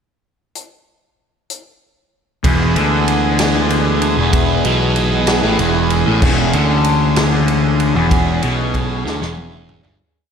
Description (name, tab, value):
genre	psychedelic rock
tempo	64 BPM (dotted quarters)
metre	6/8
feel	straight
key	E mixolydian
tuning	A4 = 441 Hz
part	vintage drum kit	drums	0.6-10.0 s	crash cymbal, hi-hat, kick drum, ride cymbal, snare drum, toms	-20 LUFS	equal	none
part	combo organ	sustained chords	2.4-10.0 s	E3 to G#4	-21 LUFS	right 4 dB	none
part	fuzz guitar	riff	2.4-10.0 s	E2 to D3	-16 LUFS	left 1 dB	distortion, phaser
part	fuzz picked electric bass	bass	2.4-10.0 s	E1 to D2	-18 LUFS	equal	overdrive
room	moderate lush hall reverb, RT60 2.1 s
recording	dreamy mix soaked in reverb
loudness	-13 LUFS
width	side -7 dB against mid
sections	0.5-2.4 pickup bar; 2.4-10.0 riff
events	fade-out 8.1-10.0; drum fill 9.0-10.0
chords	0.5 N.C.; 2.4 E